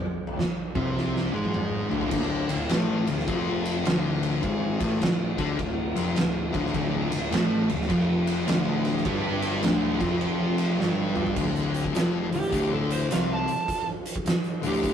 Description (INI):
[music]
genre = stoner and doom metal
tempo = 104 BPM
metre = 4/4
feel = swing 64% on 8ths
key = unclear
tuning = A4 = 440 Hz
[part]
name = oversized low-tuned drum kit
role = drums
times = 0.3-14.9 s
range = crash cymbal, hi-hat, kick drum, ride cymbal, snare drum, toms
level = -27 LUFS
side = right 1 dB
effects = none
[part]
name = thick fuzz guitar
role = riff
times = 0.4-14.9 s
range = D2 to D4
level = -28 LUFS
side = left 4 dB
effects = distortion
[part]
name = thick fuzz guitar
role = riff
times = 0.4-2.1, 6.7-11.4 s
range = D2 to C4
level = -29 LUFS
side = right 4 dB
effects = distortion
[part]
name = fuzz picked electric bass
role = bass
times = 0.4-14.9 s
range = D1 to D2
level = -34 LUFS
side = right 1 dB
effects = overdrive
[part]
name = fuzz lead guitar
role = melody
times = 12.3-14.9 s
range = G4 to A5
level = -28 LUFS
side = right 3 dB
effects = distortion
[sound]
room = moderate small room reverb, RT60 0.5 s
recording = rough rehearsal-room recording, tube saturation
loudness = -23 LUFS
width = side -8 dB against mid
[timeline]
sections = 0.0-2.1 A section; 2.1-11.4 B section; 11.4-14.9 C section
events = drum fill 1.0-2.1, 10.8-11.4; lead electric guitar solo 11.4-14.9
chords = 0.0 N.C.; 2.1 Dm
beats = 0.38 0.96 1.54 | 2.12 2.70 3.27 3.85 | 4.43 5.01 5.59 6.17 | 6.74 7.32 7.90 8.48 | 9.05 9.63 10.21 10.79 | 11.37 11.95 12.52 13.10 | 13.68 14.26 14.84